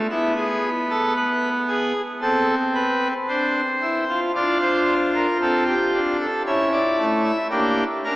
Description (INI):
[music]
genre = classical, baroque-style 4-part fugue for pipe organ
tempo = 57 BPM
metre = 4/4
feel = straight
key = D minor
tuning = A4 = 439 Hz
[part]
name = pipe organ, full organ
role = solo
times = 0.0-8.2 s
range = A3 to E5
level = -19 LUFS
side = equal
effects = none
[sound]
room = wet cathedral reverb, RT60 5.7 s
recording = small speaker sound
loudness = -19 LUFS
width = side -18 dB against mid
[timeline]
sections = 0.0-8.2 A section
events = none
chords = 0.1 E/B; 2.2 Am/C; 4.3 Dm; 6.5 C#dim7